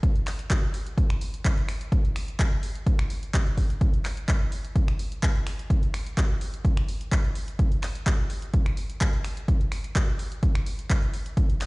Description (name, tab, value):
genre	house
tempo	127 BPM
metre	4/4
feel	straight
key	none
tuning	none
part	electronic kick drum	drums	0.0-11.5 s	none	-24 LUFS	equal	overdrive, studio reverb
part	punchy analog drum machine	drums	0.0-11.7 s	finger snaps, handclaps, hi-hat	-34 LUFS	equal	overdrive, sidechain pumping on hats, studio reverb, sidechain pumping on cymbals
room	little or no reverb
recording	played on a big sound system in a bare room, stone room reverb, nothing above 10.6 kHz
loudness	-23 LUFS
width	side -26 dB against mid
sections	0.0-11.7 A section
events	none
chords	none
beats	0.03 0.50 | 0.98 1.45 1.92 2.39 | 2.87 3.34 3.81 4.28 | 4.76 5.23 5.70 6.17 | 6.65 7.12 7.59 8.06 | 8.54 9.01 9.48 9.95 | 10.43 10.90 11.37